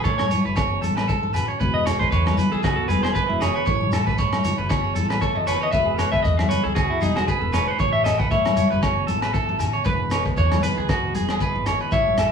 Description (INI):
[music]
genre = highlife guitar band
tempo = 116 BPM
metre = 4/4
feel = swing 55% on 16ths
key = E major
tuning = A4 = 441 Hz
[part]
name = clean electric guitar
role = melody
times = 0.0-12.3 s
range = D#4 to F#5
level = -24 LUFS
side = left 1 dB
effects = none
[part]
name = clean electric guitar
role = accompaniment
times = 0.0-12.3 s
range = E2 to F#4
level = -31 LUFS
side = left 6 dB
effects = none
[part]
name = electric guitar at the edge of break-up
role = arpeggios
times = 0.0-12.3 s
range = F#4 to C#5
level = -26 LUFS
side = right 5 dB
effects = none
[part]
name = shekere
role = percussion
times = 0.0-12.3 s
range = none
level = -31 LUFS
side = left 1 dB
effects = none
[part]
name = upright bass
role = bass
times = 0.1-12.3 s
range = E1 to A2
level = -27 LUFS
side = equal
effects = none
[part]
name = crunchy breakbeat drum kit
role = drums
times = 0.1-12.3 s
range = hi-hat, kick drum, rim click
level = -26 LUFS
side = equal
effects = none
[part]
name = agogo bells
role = percussion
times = 0.2-12.3 s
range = none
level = -31 LUFS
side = left 3 dB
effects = none
[part]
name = congas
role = percussion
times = 0.2-12.2 s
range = none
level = -27 LUFS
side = left 2 dB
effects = none
[sound]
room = moderate studio ambience, RT60 0.5 s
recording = band playing live in one room, studio reverb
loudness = -19 LUFS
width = side -6 dB against mid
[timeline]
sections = 0.0-12.3 A section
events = clean electric guitar solo 0.0-12.3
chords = 0.0 A; 1.6 Eadd9; 3.7 A; 5.7 Eadd9; 7.8 A; 9.9 Eadd9